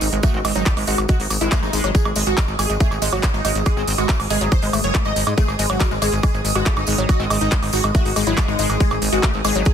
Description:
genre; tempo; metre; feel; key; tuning
psychedelic trance; 140 BPM; 4/4; straight; unclear; A4 = 440 Hz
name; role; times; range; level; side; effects
supersaw stab; melody; 0.0-9.7 s; D#4 to D#5; -25 LUFS; equal; phaser, sidechain pumping, dub echo
plucky analog bass; bass; 0.0-9.6 s; F#1 to G#2; -22 LUFS; equal; tube saturation
techno drum kit; drums; 0.0-9.7 s; handclaps, hi-hat, woodblock; -24 LUFS; right 3 dB; none
tambourine; percussion; 0.0-9.7 s; none; -32 LUFS; left 6 dB; none
airy breathy pad; texture; 0.0-9.7 s; G#3 to D#6; -28 LUFS; right 1 dB; chorus, phaser, sidechain pumping
woody wave-folded pluck; riff; 0.1-9.6 s; F#3 to A3; -26 LUFS; moving between left 8 dB and right 9 dB; chorus, auto-pan, sidechain pumping, dub echo
electronic kick drum; drums; 0.2-9.7 s; none; -17 LUFS; equal; overdrive
metallic wobble bass; second line; 0.3-3.9, 7.2-8.9 s; G#3 to B#3; -34 LUFS; right 2 dB; none
room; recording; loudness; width
light reverb; dense, heavily limited modern master; -16 LUFS; side -8 dB against mid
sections
0.0-9.7 A section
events
none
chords
0.0 G#5

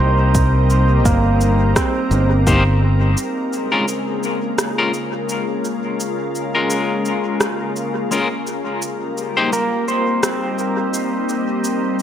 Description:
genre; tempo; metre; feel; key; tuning
ambient dub; 85 BPM; 4/4; swing 56% on 16ths; Bb dorian; A4 = 441 Hz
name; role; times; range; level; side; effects
soft additive organ-like pad; sustained chords; 0.0-12.0 s; Db3 to Bb4; -22 LUFS; left 2 dB; ensemble chorus, built-in reverb
pedal steel guitar; arpeggios; 0.0-4.6, 9.5-12.0 s; Bb3 to C5; -22 LUFS; right 3 dB; vintage 12-bit sampler grit, dub echo
modern bright fingered electric bass; bass; 0.0-3.1 s; G1 to C2; -15 LUFS; equal; tube saturation
electronic cabasa and rim click; drums; 0.3-12.0 s; none; -24 LUFS; equal; dub echo
electronic kick drum; drums; 0.3-2.6 s; none; -19 LUFS; equal; overdrive
clean electric guitar; stabs; 2.5-9.5 s; Ab3 to C5; -22 LUFS; left 3 dB; harmonic tremolo, dub echo
room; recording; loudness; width
moderate echo chamber reverb, RT60 2.2 s; none; -16 LUFS; side -10 dB against mid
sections
0.0-3.2 A section; 3.2-12.0 B section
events
none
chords
0.0 Cm7; 3.2 Bbm7; 8.8 Cm7

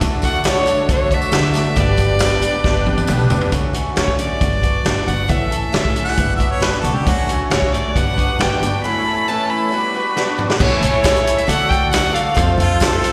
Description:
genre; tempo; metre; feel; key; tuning
folk rock and heartland rock; 136 BPM; 4/4; straight; unclear; A4 = 441 Hz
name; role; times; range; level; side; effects
picked swing-style acoustic guitar; accompaniment; 0.0-13.1 s; G2 to A4; -27 LUFS; equal; slapback echo
musette accordion; sustained chords; 0.0-3.5, 7.1-13.1 s; D4 to D5; -28 LUFS; equal; none
electric guitar through a small old amp; riff; 0.0-10.6 s; G2 to A4; -29 LUFS; equal; ensemble chorus, slapback echo
upright bass; bass; 0.0-12.7 s; G1 to D3; -23 LUFS; equal; none
vintage drum kit; drums; 0.0-13.1 s; crash cymbal, hi-hat, kick drum, snare drum, toms; -22 LUFS; equal; none
tambourine; percussion; 0.1-3.5, 11.0-12.9 s; none; -36 LUFS; equal; none
clear fiddle; melody; 0.2-12.6 s; C#5 to B5; -22 LUFS; equal; slapback echo
clear harmonica; second line; 6.0-7.4, 12.6-13.1 s; F4 to F#5; -24 LUFS; equal; slapback echo, tape echo
room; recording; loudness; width
light reverb, small room ambience; live gig heard through the venue's PA, recital hall reverb; -17 LUFS; mono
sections
0.0-3.5 A section; 3.5-10.6 B section; 10.6-13.1 C section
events
fiddle solo 0.0-3.5; drum fill 2.6-3.5, 10.2-10.6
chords
0.0 D; 1.8 G; 3.5 Dmaj7; 4.4 Gmaj7; 5.3 A; 6.2 Gmaj7; 7.1 Dmaj7; 7.9 Gmaj7; 8.8 A; 9.7 Gmaj7; 10.6 A; 11.5 D; 12.4 F

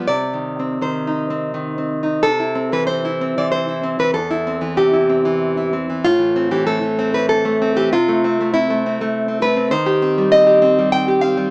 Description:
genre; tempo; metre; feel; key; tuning
romantic piece for solo classical guitar; 81-102 BPM; 3/4; rubato; C major; A4 = 437 Hz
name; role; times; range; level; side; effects
nylon-string guitar; solo; 0.0-11.5 s; E2 to G5; -15 LUFS; equal; none
room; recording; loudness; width
moderate studio reverb, RT60 0.8 s; small speaker sound; -15 LUFS; side -34 dB against mid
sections
0.0-2.2 A section; 2.2-11.5 B section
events
none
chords
0.1 Cm; 2.2 C; 4.1 C/E; 6.0 Am; 7.9 Am/C; 9.7 Cm/Eb

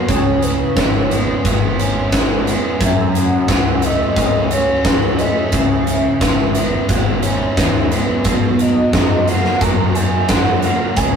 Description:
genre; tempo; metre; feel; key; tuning
rock, shoegaze and dream pop; 88 BPM; 4/4; straight; B major; A4 = 438 Hz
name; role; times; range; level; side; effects
warm velvety synth lead; melody; 0.0-11.2 s; B4 to A#5; -21 LUFS; right 1 dB; chorus
biting overdriven guitar; riff; 0.0-11.2 s; F#2 to F#4; -23 LUFS; left 4 dB; none
biting overdriven guitar; riff; 0.0-11.2 s; F#2 to D#4; -21 LUFS; right 4 dB; none
fuzz fingered electric bass; bass; 0.1-11.2 s; G#1 to F#2; -22 LUFS; equal; overdrive
huge arena drum kit; drums; 0.1-11.1 s; hi-hat, kick drum, snare drum; -17 LUFS; left 1 dB; none
room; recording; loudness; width
wet booth ambience, RT60 0.2 s; rough rehearsal-room recording, warm saturation; -13 LUFS; side -7 dB against mid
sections
0.0-11.2 A section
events
none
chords
0.1 C#m7; 2.8 F#m7; 5.5 C#m7; 8.3 Bmaj7

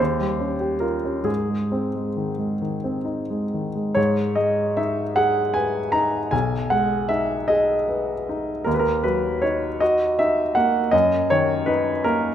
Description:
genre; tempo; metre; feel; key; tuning
classical, romantic nocturne for solo piano; 43-54 BPM (dotted quarters); 6/8; rubato; Ab major, G# minor from 4.0 s; A4 = 440 Hz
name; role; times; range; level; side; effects
warm grand piano; solo; 0.0-12.3 s; B1 to A#5; -20 LUFS; equal; none
room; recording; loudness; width
wet recital hall reverb, RT60 1.6 s; none; -20 LUFS; side -10 dB against mid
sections
0.0-4.0 A section; 4.0-12.3 B section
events
none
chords
0.0 Eb9; 1.3 Ab; 4.0 G#m; 6.3 G#m/B; 8.7 D#m; 10.9 D#m/F#

